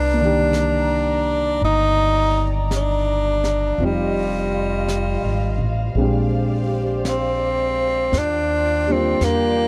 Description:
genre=jazz ballad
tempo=55 BPM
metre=4/4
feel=swing 69% on 8ths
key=unclear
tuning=A4 = 441 Hz
part: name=breathy tenor saxophone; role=melody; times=0.0-9.7 s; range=G3 to Eb4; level=-22 LUFS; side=equal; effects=tape echo
part: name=dark studio string section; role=sustained chords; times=0.0-9.7 s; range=F4 to Bb5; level=-33 LUFS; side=equal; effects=none
part: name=upright bass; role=bass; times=0.0-9.7 s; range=F1 to Fb2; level=-25 LUFS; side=equal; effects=none
part: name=warm upright piano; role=accompaniment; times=0.1-9.7 s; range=Eb3 to D5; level=-28 LUFS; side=equal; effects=none
part: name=jazz brush drum kit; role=drums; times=0.5-9.7 s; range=brushed snare drum, hi-hat, snare drum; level=-34 LUFS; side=equal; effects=none
room=little or no reverb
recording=dry, close 1970s-style studio recording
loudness=-20 LUFS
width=mono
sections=0.0-9.7 A section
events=none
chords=0.0 Cm9; 3.8 Fm7; 6.0 Bb13; 8.1 Ebmaj9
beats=0.54 1.63 2.72 | 3.80 4.89 5.97 7.06 | 8.14 9.22

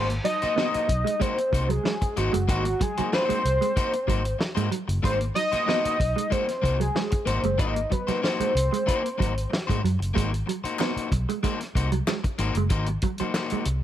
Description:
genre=funk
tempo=94 BPM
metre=4/4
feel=straight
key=Ab mixolydian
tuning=A4 = 440 Hz
part: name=fat analog lead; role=melody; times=0.0-9.5 s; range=Gb4 to Eb5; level=-26 LUFS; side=equal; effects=chorus
part: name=electric guitar at the edge of break-up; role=accompaniment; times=0.0-13.7 s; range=Bb3 to C5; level=-31 LUFS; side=left 5 dB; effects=none
part: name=mellow electric guitar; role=riff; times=0.0-13.7 s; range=Gb3 to Cb4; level=-31 LUFS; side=right 8 dB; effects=none
part: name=vintage muted fingered electric bass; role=bass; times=0.0-13.8 s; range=Gb1 to Ab2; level=-26 LUFS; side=equal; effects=none
part: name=warm soul drum kit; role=drums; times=0.1-13.8 s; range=hi-hat, kick drum, snare drum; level=-28 LUFS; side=equal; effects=none
part: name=group handclap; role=percussion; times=10.8-13.5 s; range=none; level=-36 LUFS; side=left 4 dB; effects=none
room=little or no reverb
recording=none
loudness=-22 LUFS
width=side -11 dB against mid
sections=0.0-13.8 A section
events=none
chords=0.0 Ab9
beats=0.57 1.21 1.85 | 2.48 3.12 3.76 4.40 | 5.04 5.68 6.32 6.96 | 7.59 8.23 8.87 9.51 | 10.15 10.79 11.43 12.07 | 12.71 13.35

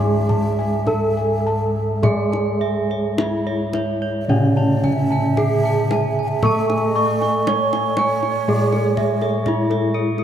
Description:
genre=Javanese gamelan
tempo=52-63 BPM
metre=4/4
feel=straight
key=C# pelog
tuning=A4 = 441 Hz
part: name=gamelan-type bronze metallophone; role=melody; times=0.0-10.2 s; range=C#4 to C#5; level=-22 LUFS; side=right 1 dB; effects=none
part: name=breathy low xiao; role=second line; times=0.0-9.9 s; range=C#5 to G#5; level=-28 LUFS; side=right 4 dB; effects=none
part: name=gamelan-type bronze metallophone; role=accompaniment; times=0.0-10.2 s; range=C#3 to A3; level=-25 LUFS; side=right 1 dB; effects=none
part: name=gamelan-type bossed gongs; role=arpeggios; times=0.0-10.2 s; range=A4 to C#6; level=-25 LUFS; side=left 1 dB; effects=slapback echo
part: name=gamelan-type bossed gongs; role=bass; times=0.0-10.2 s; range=G#2 to A4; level=-23 LUFS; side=left 1 dB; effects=none
part: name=kendang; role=percussion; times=0.3-10.2 s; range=none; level=-26 LUFS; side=left 2 dB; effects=none
part: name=gamelan-type bronze metallophone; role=arpeggios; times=2.0-10.2 s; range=A4 to C#6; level=-27 LUFS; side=right 3 dB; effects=none
room=wet cathedral reverb, RT60 6.4 s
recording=in a vast, echoing space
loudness=-17 LUFS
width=side -9 dB against mid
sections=0.0-10.2 A section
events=none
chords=none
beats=0.87 | 2.03 3.18 4.29 5.38 | 6.44 7.47 8.48 9.47

